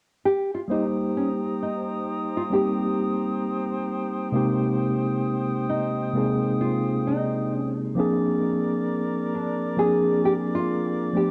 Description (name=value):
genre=hip hop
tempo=66 BPM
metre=4/4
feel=swing 65% on 16ths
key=unclear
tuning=A4 = 440 Hz
part: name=nylon-string guitar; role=melody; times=0.3-11.3 s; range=Db4 to Ab4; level=-29 LUFS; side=equal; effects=low-pass filter
part: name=mellow tine electric piano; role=accompaniment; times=0.7-11.3 s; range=C3 to C5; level=-26 LUFS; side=equal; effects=cassette tape, low-pass filter
part: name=small flute group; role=sustained chords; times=0.7-11.3 s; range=Bb4 to Eb6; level=-36 LUFS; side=equal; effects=low-pass filter
room=light reverb, small room ambience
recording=cassette tape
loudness=-25 LUFS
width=mono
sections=0.7-11.3 A section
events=none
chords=0.0 N.C.; 0.7 Cm7; 4.3 Abmaj7/C; 8.0 Bb7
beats=| 0.69 1.60 2.51 3.42 | 4.33 5.24 6.14 7.05 | 7.96 8.87 9.78 10.69